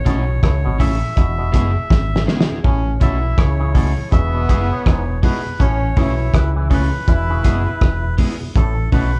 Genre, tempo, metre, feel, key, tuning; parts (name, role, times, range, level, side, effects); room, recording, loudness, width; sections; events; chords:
roots reggae; 81 BPM; 4/4; swing 60% on 16ths; A4 = 440 Hz
melodica; melody; 0.0-9.2 s; A4 to E5; -29 LUFS; equal
electric guitar at the edge of break-up; accompaniment; 0.0-9.1 s; B3 to A4; -31 LUFS; equal
deep dub fingered electric bass; bass; 0.0-9.2 s; E1 to C#2; -22 LUFS; equal
mellow tonewheel organ; accompaniment; 0.1-9.2 s; E2 to E4; -32 LUFS; equal; slow rotary speaker
auto-wah clav; arpeggios; 0.1-9.1 s; G#2 to E3; -32 LUFS; equal
cloth-damped thuddy drum kit; drums; 0.1-9.1 s; hi-hat, kick drum, rim click, snare drum; -18 LUFS; equal
brilliant trombone; second line; 2.6-8.1 s; B3 to E4; -29 LUFS; equal
light reverb; band playing live in one room, cassette tape; -17 LUFS; mono
0.0-9.2 A section
drum fill 1.9-2.6
0.0 A; 1.2 E; 2.6 A; 4.1 E; 5.6 A; 7.1 E; 8.6 A